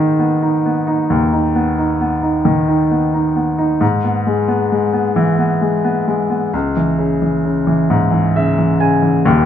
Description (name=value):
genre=pop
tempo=44 BPM (dotted quarters)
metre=6/8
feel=straight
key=unclear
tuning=A4 = 440 Hz
part: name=clear baby grand piano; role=solo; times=0.0-9.5 s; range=D#1 to G#5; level=-13 LUFS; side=equal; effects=none
room=wet studio reverb, RT60 0.9 s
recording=band playing live in one room, nothing above 10.9 kHz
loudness=-13 LUFS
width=side -9 dB against mid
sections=0.0-9.2 A section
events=grand piano fill 7.9-9.2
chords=0.0 G#m; 3.8 E/G#; 6.5 C#m